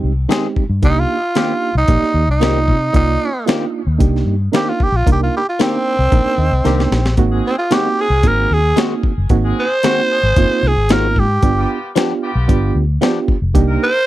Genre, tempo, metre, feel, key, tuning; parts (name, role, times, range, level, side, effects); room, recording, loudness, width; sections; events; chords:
straight-eighth soul blues; 113 BPM; 4/4; straight; C minor; A4 = 440 Hz
reed electric piano; accompaniment; 0.0-13.9 s; Ab3 to G5; -20 LUFS; right 6 dB; fast tremolo
vintage muted fingered electric bass; bass; 0.0-13.8 s; F1 to C3; -16 LUFS; left 1 dB
direct-recorded clean electric guitar; stabs; 0.3-13.2 s; Eb3 to Ab4; -19 LUFS; left 9 dB; phaser
breakbeat sampler-style drum kit; drums; 0.3-13.7 s; hi-hat, kick drum, snare drum; -16 LUFS; left 1 dB
growling tenor saxophone; melody; 0.8-14.1 s; C4 to C5; -17 LUFS; right 1 dB
brilliant horn section; sustained chords; 7.2-14.0 s; G3 to Bb4; -27 LUFS; left 2 dB
little or no reverb; dry, close 1970s-style studio recording; -13 LUFS; side -15 dB against mid
0.0-14.1 A section
tenor saxophone solo 0.0-14.1; reed electric piano fill 6.1-7.2; drum fill 6.7-7.2
0.0 Fm7 (rootless); 0.8 Cm7; 7.2 Ab7; 11.4 G7; 13.5 Cm7